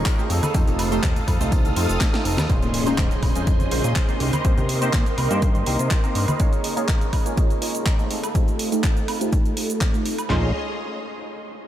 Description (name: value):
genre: filtered disco house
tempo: 123 BPM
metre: 4/4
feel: straight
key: Bb dorian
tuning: A4 = 440 Hz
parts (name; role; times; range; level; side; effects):
- funky polysynth comp; accompaniment; 0.0-10.5 s; Ab3 to Db5; -27 LUFS; right 2 dB; chorus, phaser, sidechain pumping, low-pass filter
- string machine, full ensemble; sustained chords; 0.0-10.5 s; Db4 to Eb6; -29 LUFS; equal; phaser, ensemble chorus, sidechain pumping, low-pass filter
- electric guitar with an envelope filter; riff; 0.0-10.5 s; Ab3 to C5; -33 LUFS; equal; sidechain pumping, low-pass filter
- fat analog bass; bass; 0.0-6.3, 10.3-10.5 s; F1 to C3; -24 LUFS; equal; sidechain pumping, low-pass filter
- house drum kit; drums; 0.1-10.3 s; handclaps, hi-hat, shaker, snare drum, woodblock; -29 LUFS; right 1 dB; sidechain pumping on hats, sidechain pumping on perc
- punchy analog drum machine; drums; 0.1-10.4 s; handclaps, kick drum, snare drum, toms; -21 LUFS; equal; none
- tambourine and congas; percussion; 0.1-6.4 s; none; -31 LUFS; equal; none
- impact; sound effects; 2.5-4.4 s; none; -33 LUFS; equal; none
room: moderate cathedral reverb, RT60 6.6 s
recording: dreamy mix soaked in reverb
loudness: -19 LUFS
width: side -12 dB against mid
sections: 0.0-2.5 A section; 2.5-10.3 B section; 10.3-11.7 C section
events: drop 0.0-2.5; drum fill 2.0-2.5; impact 2.5-4.4; filter sweep 2.5-10.3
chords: 0.3 F7; 2.5 Bbm11; 4.2 Cm7; 6.4 Eb7sus4; 8.1 F7; 10.3 Bbm11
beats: 0.06 | 0.55 1.03 1.52 2.01 | 2.50 2.98 3.47 3.96 | 4.45 4.93 5.42 5.91 | 6.40 6.89 7.37 7.86 | 8.35 8.84 9.32 9.81 | 10.30